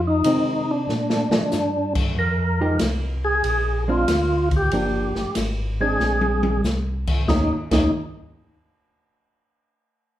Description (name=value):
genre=soul jazz organ trio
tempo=94 BPM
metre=4/4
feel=swing 68% on 8ths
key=Eb major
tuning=A4 = 440 Hz
part: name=mellow tonewheel organ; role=bass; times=0.0-7.9 s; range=G1 to C3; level=-25 LUFS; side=equal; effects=slow rotary speaker
part: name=percussive tonewheel organ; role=melody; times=0.1-7.9 s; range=D4 to Bb4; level=-22 LUFS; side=equal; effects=slow rotary speaker, overdrive, chorus vibrato
part: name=open jazz drum kit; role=drums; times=0.2-7.8 s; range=crash cymbal, hi-hat, kick drum, ride cymbal, snare drum, toms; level=-25 LUFS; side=equal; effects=none
part: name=hollow-body jazz guitar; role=accompaniment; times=0.3-7.9 s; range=Eb3 to G4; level=-26 LUFS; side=right 1 dB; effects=none
room=wet large studio reverb, RT60 0.9 s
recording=band playing live in one room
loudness=-19 LUFS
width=side -13 dB against mid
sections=0.0-2.2 A section; 2.2-7.3 B section; 7.3-9.8 C section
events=drum fill 0.9-1.5, 6.0-6.6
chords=0.0 Fm7; 0.9 Bb7; 2.2 Fm9; 3.4 Bb9; 4.7 Gm7; 6.0 Bb9; 7.3 Eb7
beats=0.25 0.89 1.53 | 2.17 2.81 3.44 4.08 | 4.72 5.36 6.00 6.64 | 7.28